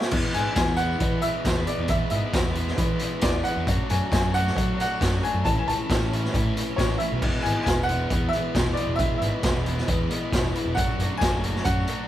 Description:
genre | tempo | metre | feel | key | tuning
indie rock | 135 BPM | 4/4 | straight | E mixolydian | A4 = 440 Hz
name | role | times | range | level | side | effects
bright upright piano | melody | 0.0-12.1 s | C#5 to A5 | -28 LUFS | equal | none
raw garage drum kit | drums | 0.0-12.0 s | crash cymbal, hi-hat, kick drum, snare drum | -26 LUFS | equal | none
raw garage guitar | riff | 0.1-12.1 s | A2 to F#4 | -29 LUFS | left 1 dB | overdrive
fuzz picked electric bass | bass | 0.1-11.8 s | E1 to F#3 | -27 LUFS | equal | overdrive
room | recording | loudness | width
light reverb | band playing live in one room | -22 LUFS | side -12 dB against mid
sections
0.1-12.1 A section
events
none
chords
0.1 E; 3.7 D/F#; 5.4 A; 7.2 E; 10.8 D/F#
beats
| 0.12 0.57 1.01 1.46 | 1.90 2.34 2.79 3.23 | 3.67 4.12 4.56 5.00 | 5.45 5.89 6.33 6.78 | 7.22 7.66 8.11 8.55 | 8.99 9.44 9.88 10.32 | 10.76 11.20 11.65

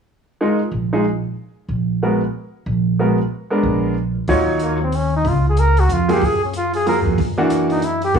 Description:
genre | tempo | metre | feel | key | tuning
jazz, small-group swing and bop | 186 BPM | 3/4 | swing 61% on 8ths | Eb minor | A4 = 440 Hz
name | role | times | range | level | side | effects
clear baby grand piano | accompaniment | 0.4-8.2 s | D#3 to Db5 | -18 LUFS | right 1 dB | cassette tape, plate reverb
upright bass | bass | 0.7-8.2 s | Bb1 to Gb2 | -19 LUFS | right 1 dB | none
open jazz drum kit | drums | 4.3-8.2 s | hi-hat, kick drum | -30 LUFS | equal | cassette tape
warm flugelhorn | melody | 4.6-8.2 s | Bb3 to Bb4 | -20 LUFS | equal | cassette tape, plate reverb
room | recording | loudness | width
moderate booth ambience, RT60 0.2 s | home recording on cassette, studio reverb | -16 LUFS | side -6 dB against mid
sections
0.4-4.3 A section; 4.3-8.2 B section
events
none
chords
0.4 Bb7sus4; 1.4 Abm9/Bb; 3.3 Bb7b9; 4.3 Ebm9; 5.2 Db6; 6.2 Gbmaj9; 7.2 Gbaug7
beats
| 0.40 0.72 1.05 | 1.37 1.70 2.02 | 2.34 2.67 2.99 | 3.31 3.63 3.96 | 4.28 4.60 4.92 | 5.25 5.57 5.89 | 6.21 6.54 6.86 | 7.18 7.50 7.83 | 8.15

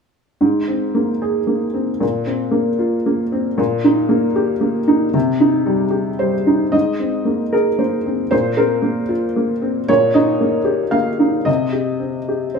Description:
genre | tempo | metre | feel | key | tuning
neoclassical minimalist piano | 114 BPM | 3/4 | rubato | Ab major | A4 = 438 Hz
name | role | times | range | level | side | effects
felt-muted upright piano | solo | 0.4-12.6 s | Ab2 to F5 | -15 LUFS | equal | none
room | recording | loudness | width
wet stone room reverb, RT60 0.9 s | band playing live in one room | -15 LUFS | side -5 dB against mid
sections
0.4-6.7 A section; 6.7-12.6 B section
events
none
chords
0.4 Abadd9; 2.0 Bbsus2; 3.6 Eb/Bb; 5.1 Cm; 6.7 Abadd9; 8.3 Bbsus2; 9.9 Eb/Bb; 11.5 Cm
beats
| 0.42 0.95 1.49 | 2.02 2.54 3.06 | 3.58 4.10 4.62 | 5.14 5.66 6.19 | 6.74 7.27 7.80 | 8.32 8.84 9.37 | 9.88 10.40 10.93 | 11.48 12.02 12.56

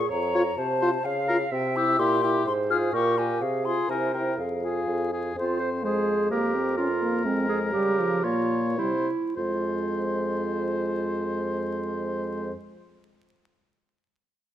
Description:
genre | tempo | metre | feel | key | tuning
quick classical-period movement for wind quintet | 100-129 BPM | 2/4 | straight | F minor | A4 = 440 Hz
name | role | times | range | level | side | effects
mellow hollow silver concert flute | melody | 0.0-5.1 s | F5 to F6 | -28 LUFS | left 7 dB | none
clear clarinet | accompaniment | 0.0-12.5 s | C4 to F5 | -29 LUFS | right 4 dB | none
mellow bassoon | bass | 0.0-12.5 s | F2 to Db3 | -30 LUFS | right 1 dB | none
warm oboe | second line | 0.3-12.5 s | G4 to Db5 | -32 LUFS | left 3 dB | none
clear French horn | accompaniment | 0.3-12.5 s | F3 to F4 | -30 LUFS | left 1 dB | none
room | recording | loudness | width
moderate recital hall reverb, RT60 1.5 s | vinyl crackle | -23 LUFS | side -11 dB against mid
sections
0.0-5.4 A section; 5.4-9.4 B section; 9.4-11.8 C section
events
slowing down 6.8-9.4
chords
0.0 Bbm; 0.6 F/C; 1.1 Bbm/Db (rootless); 1.5 C; 2.0 C7/Bb; 2.5 Fm/Ab; 2.9 Gm7b5/Bb; 3.4 Fm/C; 3.9 C7; 4.4 Fm; 6.3 Bb5/F; 7.2 Fm; 7.7 Db; 8.2 Bbm; 8.8 C; 9.4 Fm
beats
0.11 | 0.58 1.05 | 1.52 1.99 | 2.46 2.94 | 3.41 3.89 | 4.38 4.87 | 5.36 5.83 | 6.30 6.77 | 7.25 7.73 | 8.24 8.79 | 9.38 9.97 | 10.56 11.16

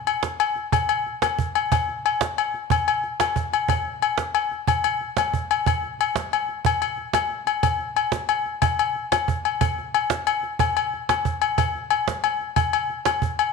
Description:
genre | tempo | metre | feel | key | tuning
highlife | 122 BPM (dotted quarters) | 12/8 | straight | none | none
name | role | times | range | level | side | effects
cajon | drums | 0.1-13.4 s | none | -26 LUFS | right 7 dB | none
agogo bells | percussion | 0.1-13.5 s | none | -22 LUFS | left 8 dB | none
room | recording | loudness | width
moderate echo chamber reverb, RT60 1.4 s, small room reverb | 1960s-style stereo with parts hard left and right | -21 LUFS | side -4 dB against mid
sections
0.0-13.5 A section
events
none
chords
none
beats
0.23 0.73 1.22 | 1.72 2.21 2.70 3.20 | 3.69 4.18 4.68 5.17 | 5.67 6.16 6.65 7.14 | 7.64 8.13 8.62 9.11 | 9.61 10.10 10.59 11.08 | 11.57 12.07 12.56 13.05

